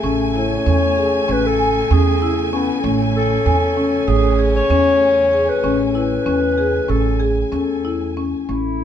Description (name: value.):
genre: contemporary instrumental, chamber music in an uneven meter.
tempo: 193 BPM (eighths).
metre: 9/8.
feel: straight.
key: A major.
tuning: A4 = 440 Hz.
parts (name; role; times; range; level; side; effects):
warm French horn; second line; 0.0-8.8 s; A3 to C#4; -24 LUFS; left 3 dB; none.
warm studio string section; sustained chords; 0.0-8.5 s; C#3 to G#5; -26 LUFS; equal; none.
marimba with medium mallets; arpeggios; 0.0-8.8 s; C#4 to G#5; -20 LUFS; left 4 dB; none.
upright bass; bass; 0.0-8.8 s; A1 to E2; -20 LUFS; right 3 dB; none.
dark clarinet; melody; 0.4-8.8 s; E4 to C#5; -19 LUFS; left 1 dB; none.
room: light reverb.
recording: none.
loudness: -15 LUFS.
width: side -9 dB against mid.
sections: 0.0-8.5 A section.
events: none.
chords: 0.0 Amaj7.